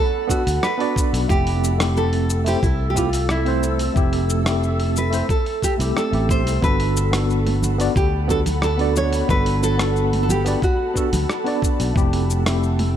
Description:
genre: sunset chillout.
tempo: 90 BPM.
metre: 4/4.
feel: straight.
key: G major.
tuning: A4 = 440 Hz.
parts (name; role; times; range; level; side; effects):
nylon-string guitar; melody; 0.0-11.6 s; E4 to C#5; -24 LUFS; right 2 dB; tape echo.
ethereal airy pad; sustained chords; 0.0-13.0 s; A4 to E6; -29 LUFS; right 1 dB; ensemble chorus, built-in reverb, tremolo.
tine electric piano; accompaniment; 0.3-13.0 s; A3 to D5; -24 LUFS; moving between left 2 dB and right 5 dB; medium stereo tremolo, auto-pan, digital delay.
dusty soul sampler-style drum kit; drums; 0.3-12.9 s; cabasa, hi-hat, rim click; -28 LUFS; left 1 dB; none.
electronic kick drum; drums; 0.3-12.1 s; none; -21 LUFS; equal; none.
sustaining fretless electric bass; bass; 0.5-13.0 s; F1 to D2; -21 LUFS; equal; tube saturation.
congas; percussion; 7.5-12.9 s; none; -28 LUFS; right 2 dB; none.
room: light reverb.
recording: none.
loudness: -17 LUFS.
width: side -10 dB against mid.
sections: 0.0-13.0 A section.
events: none.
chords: 0.0 Gmaj9 (rootless); 1.3 Fmaj9; 6.6 Gmaj9; 12.0 Fmaj9.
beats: 0.63 | 1.29 1.96 2.63 3.29 | 3.96 4.63 5.29 5.96 | 6.63 7.29 7.96 8.63 | 9.29 9.96 10.63 11.29 | 11.96 12.63.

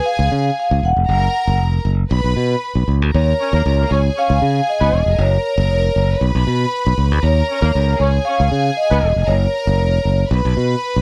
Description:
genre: disco.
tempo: 117 BPM.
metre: 4/4.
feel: straight.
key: unclear.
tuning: A4 = 440 Hz.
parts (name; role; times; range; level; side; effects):
vibraphone with soft mallets; melody; 0.0-10.3 s; Db5 to Gb5; -21 LUFS; equal; none.
clear studio violin section; second line; 0.0-11.0 s; Ab4 to B5; -27 LUFS; equal; none.
modern bright fingered electric bass; bass; 0.2-11.0 s; Fb1 to Db3; -18 LUFS; equal; none.
warm horn section; stabs; 3.4-9.1 s; Bb3 to Db5; -25 LUFS; equal; none.
room: little or no reverb.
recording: dry, close 1970s-style studio recording.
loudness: -17 LUFS.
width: mono.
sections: 0.0-3.1 A section; 3.1-11.0 B section.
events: none.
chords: 0.0 Db; 1.1 Gbmaj7; 2.1 Bsus2; 3.1 Eb5; 3.9 Db7; 5.2 Gbmaj7; 6.2 Bsus2; 7.2 Eb5; 8.0 Db7; 9.3 Gbmaj7; 10.3 N.C..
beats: 0.05 0.57 | 1.08 1.59 2.11 2.62 | 3.13 3.65 4.16 4.67 | 5.18 5.70 6.21 6.72 | 7.23 7.74 8.26 8.77 | 9.28 9.79 10.30 10.81.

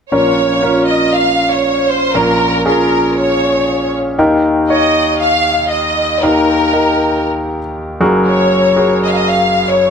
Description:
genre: pop.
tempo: 118 BPM.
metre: 4/4.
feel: straight.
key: unclear.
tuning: A4 = 441 Hz.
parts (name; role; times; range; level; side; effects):
rich studio violin section; melody; 0.1-9.9 s; Bb4 to F5; -13 LUFS; equal; plate reverb.
clear concert grand piano; accompaniment; 0.1-9.9 s; Gb1 to Db5; -14 LUFS; equal; none.
room: wet large studio reverb, RT60 0.9 s.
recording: none.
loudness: -11 LUFS.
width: side -6 dB against mid.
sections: 0.1-9.9 A section.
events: none.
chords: 0.1 Bbm; 4.2 Eb; 8.0 Gbadd9.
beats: | 0.11 0.62 1.13 1.64 | 2.15 2.66 3.17 3.68 | 4.19 4.70 5.21 5.71 | 6.22 6.73 7.24 7.75 | 8.26 8.77 9.28 9.79.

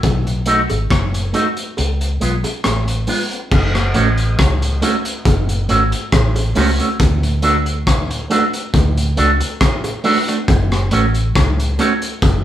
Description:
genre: roots reggae.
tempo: 69 BPM.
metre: 4/4.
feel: straight.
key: F# minor from 3.5 s.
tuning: A4 = 440 Hz.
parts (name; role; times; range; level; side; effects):
vintage muted fingered electric bass; bass; 0.0-12.4 s; F#1 to D2; -18 LUFS; equal; none.
crunchy breakbeat drum kit; drums; 0.0-12.4 s; crash cymbal, hi-hat, kick drum, rim click; -18 LUFS; left 1 dB; none.
bongos; percussion; 0.0-12.4 s; none; -27 LUFS; right 1 dB; none.
electric guitar with an envelope filter; accompaniment; 0.5-11.9 s; G#3 to F#4; -17 LUFS; right 2 dB; slapback echo.
room: light reverb.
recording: band playing live in one room.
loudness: -14 LUFS.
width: side -12 dB against mid.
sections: 0.0-3.5 A section; 3.5-12.4 B section.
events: break 1.8-3.5.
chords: 0.0 B7; 1.8 C#7; 3.5 F#m; 7.0 D; 10.5 F#m.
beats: | 0.03 0.90 1.77 2.65 | 3.52 4.39 5.26 6.13 | 7.00 7.87 8.74 9.61 | 10.48 11.35 12.22.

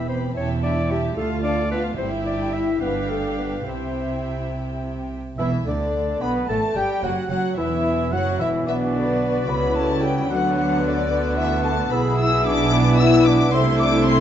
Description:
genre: quick classical-period movement for symphony orchestra.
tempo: 74 BPM (dotted quarters).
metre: 6/8.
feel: straight.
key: C major, B minor from 5.4 s.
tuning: A4 = 440 Hz.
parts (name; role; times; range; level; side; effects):
warm chamber violin section; melody; 0.0-14.2 s; D5 to E6; -30 LUFS; left 5 dB; none.
warm clarinet; second line; 0.0-14.2 s; D4 to E5; -30 LUFS; left 2 dB; none.
warm studio violin section; second line; 0.0-14.2 s; D4 to F5; -31 LUFS; equal; none.
warm chamber viola section; accompaniment; 0.0-14.2 s; D3 to F4; -28 LUFS; equal; none.
warm French horn section; sustained chords; 0.0-14.2 s; D3 to E4; -26 LUFS; left 4 dB; none.
warm chamber cello section; bass; 0.0-14.2 s; D2 to D3; -26 LUFS; right 2 dB; none.
warm chamber double bass section; bass; 0.0-14.2 s; E1 to D2; -27 LUFS; right 3 dB; none.
mellow hollow silver concert flute; second line; 5.4-14.1 s; D5 to E6; -29 LUFS; left 2 dB; none.
warm cor anglais; second line; 5.4-14.2 s; B4 to A5; -31 LUFS; right 3 dB; none.
mellow bassoon; accompaniment; 5.4-14.2 s; D3 to B3; -28 LUFS; right 2 dB; none.
room: wet recital hall reverb, RT60 1.4 s.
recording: nothing above 7.8 kHz.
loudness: -19 LUFS.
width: side -10 dB against mid.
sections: 0.0-5.4 A section; 5.4-14.2 B section.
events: none.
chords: 0.4 A5/E; 1.2 Dm; 2.0 Cadd9/G; 2.8 G5; 3.7 C; 5.4 Bm; 7.0 Esus2; 8.7 Bm; 10.3 Bm/D; 11.9 E7/B; 13.5 Am/C.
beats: | 0.36 1.17 | 1.98 2.81 | 3.67 4.53 | 5.39 6.22 | 7.03 7.85 | 8.68 9.49 | 10.31 11.11 | 11.92 12.73 | 13.54.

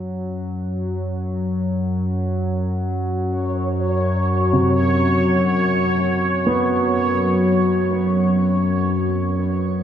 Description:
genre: dark ambient drone.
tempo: free time.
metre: none.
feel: none.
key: unclear.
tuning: A4 = 440 Hz.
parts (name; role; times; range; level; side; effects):
analog drone; drone; 0.0-9.8 s; F#2 to F#3; -19 LUFS; left 1 dB; chorus.
bubbling stepped-filter texture; texture; 3.4-9.8 s; C#5; -24 LUFS; right 2 dB; chorus, built-in reverb, shimmer reverb.
dark concert grand piano; arpeggios; 4.5-9.8 s; B#2 to B3; -24 LUFS; right 2 dB; diffuse ambient delay, shimmer reverb.
room: wet huge ambient reverb, RT60 8.6 s.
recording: dark, warm production.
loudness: -18 LUFS.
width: side -9 dB against mid.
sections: 0.0-9.8 A section.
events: fade-in on synth drone 0.0-9.8.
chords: 0.0 F#5.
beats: free time.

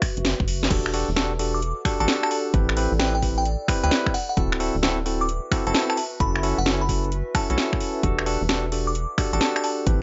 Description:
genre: UK garage, two-step garage.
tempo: 131 BPM.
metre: 4/4.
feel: swing 66% on 16ths.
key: E minor.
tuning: A4 = 440 Hz.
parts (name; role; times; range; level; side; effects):
electronic kick drum; drums; 0.0-10.0 s; none; -27 LUFS; equal; none.
house drum kit; drums; 0.0-10.0 s; crash cymbal, finger snaps, hi-hat, snare drum; -28 LUFS; equal; none.
warbly tape-like pad; texture; 0.0-10.0 s; F#4 to G5; -38 LUFS; equal; none.
rubbery square bass; bass; 0.2-10.0 s; D1 to D2; -28 LUFS; equal; none.
barky tine electric piano; stabs; 0.7-10.0 s; C4 to B4; -29 LUFS; equal; overdrive, dub echo.
glassy synth bell; melody; 1.5-9.7 s; F#5 to D6; -31 LUFS; equal; chorus, dub echo.
room: light reverb.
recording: nothing above 7.7 kHz.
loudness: -23 LUFS.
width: mono.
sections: 0.0-10.0 A section.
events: drum fill 0.2-0.7.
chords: 0.0 F#7sus4; 0.7 Em11; 2.5 Am7; 4.1 D7; 6.0 F#m7; 8.0 Em11.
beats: 0.25 | 0.71 1.16 1.62 2.08 | 2.54 3.00 3.45 3.91 | 4.37 4.83 5.29 5.74 | 6.20 6.66 7.12 7.58 | 8.03 8.49 8.95 9.41 | 9.87.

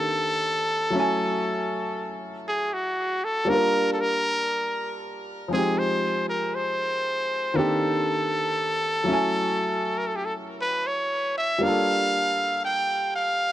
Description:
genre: R&B.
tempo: 59 BPM.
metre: 4/4.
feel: straight.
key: unclear.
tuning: A4 = 441 Hz.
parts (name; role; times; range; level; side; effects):
brilliant trumpet; melody; 0.0-13.5 s; F#4 to G5; -24 LUFS; equal; digital delay.
warm baby grand piano; accompaniment; 0.0-13.5 s; Eb3 to G#5; -27 LUFS; equal; none.
room: light reverb.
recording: none.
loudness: -22 LUFS.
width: side -13 dB against mid.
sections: 0.0-13.5 A section.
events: none.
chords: 0.0 Cm9; 0.9 F#m9; 3.5 Gm7; 5.5 Fm9; 7.6 Cm9; 9.1 F#m9; 11.6 Gm9.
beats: 0.44 1.46 2.47 | 3.49 4.51 5.52 6.54 | 7.56 8.57 9.59 10.61 | 11.62 12.64.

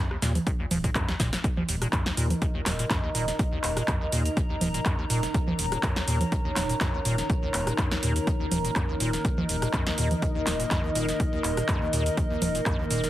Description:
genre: acid house.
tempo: 123 BPM.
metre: 4/4.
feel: swing 54% on 16ths.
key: unclear.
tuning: A4 = 439 Hz.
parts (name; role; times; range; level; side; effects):
liquid acid bass; riff; 0.0-13.0 s; Eb2 to Bb2; -31 LUFS; equal; chorus, overdrive, digital delay.
electro analog drum machine; drums; 0.1-13.1 s; congas, handclaps, hi-hat, rim click, shaker, snare drum; -29 LUFS; right 1 dB; none.
saturated sub bass; bass; 0.2-13.1 s; Eb1 to Eb2; -31 LUFS; equal; tube saturation, sidechain pumping.
electronic kick drum; drums; 0.5-12.8 s; none; -27 LUFS; equal; none.
dark analog pad; sustained chords; 1.4-13.1 s; Eb3 to Eb5; -34 LUFS; equal; chorus, sidechain pumping.
warbly tape-like pad; texture; 2.1-13.1 s; Eb4 to Bb5; -33 LUFS; equal; chorus, built-in reverb, phaser, sidechain pumping.
room: little or no reverb.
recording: heavily compressed radio sound.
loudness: -24 LUFS.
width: side -14 dB against mid.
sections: 0.0-1.4 A section; 1.4-13.1 A section.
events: drop 0.0-1.4, 1.4-13.1; drum fill 1.1-1.4.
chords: 0.0 Eb5.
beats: 0.47 0.95 | 1.44 1.93 2.42 2.90 | 3.39 3.88 4.37 4.86 | 5.34 5.83 6.32 6.81 | 7.30 7.78 8.27 8.76 | 9.25 9.73 10.22 10.71 | 11.20 11.69 12.17 12.66.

